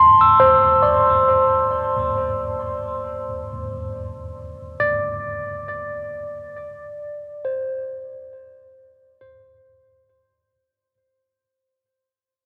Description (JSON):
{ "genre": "ambient", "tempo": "68 BPM", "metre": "4/4", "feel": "straight", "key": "unclear", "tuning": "A4 = 442 Hz", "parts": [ { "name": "overdriven tine electric piano", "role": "solo", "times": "0.0-10.9 s", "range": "C5 to E6", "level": "-20 LUFS", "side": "equal", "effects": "phaser, tape echo" } ], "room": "wet huge ambient reverb, RT60 7.4 s", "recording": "none", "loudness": "-19 LUFS", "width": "mono", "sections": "0.0-10.5 A section", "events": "fade-out 1.1-10.5", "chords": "0.0 D7(no3)", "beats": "0.83 1.71 2.59 | 3.47 4.36 5.24 6.12 | 7.00 7.88 8.77 9.65" }